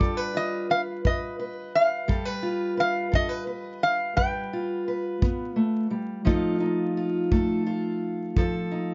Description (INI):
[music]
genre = acoustic country blues, solo or duo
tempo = 58 BPM (dotted quarters)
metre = 12/8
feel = straight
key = unclear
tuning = A4 = 442 Hz
[part]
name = metal-body resonator slide guitar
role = melody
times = 0.0-8.9 s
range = D5 to G5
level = -27 LUFS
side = equal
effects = none
[part]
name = fingerpicked steel-string acoustic guitar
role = accompaniment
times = 0.0-8.9 s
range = F3 to B4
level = -29 LUFS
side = equal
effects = none
[part]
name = kick drum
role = drums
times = 0.0-8.5 s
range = none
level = -27 LUFS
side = equal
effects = none
[sound]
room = light reverb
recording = vinyl crackle, nothing above 7.5 kHz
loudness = -26 LUFS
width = mono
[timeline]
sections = 0.0-8.9 A section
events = none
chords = 0.0 G7; 6.3 F7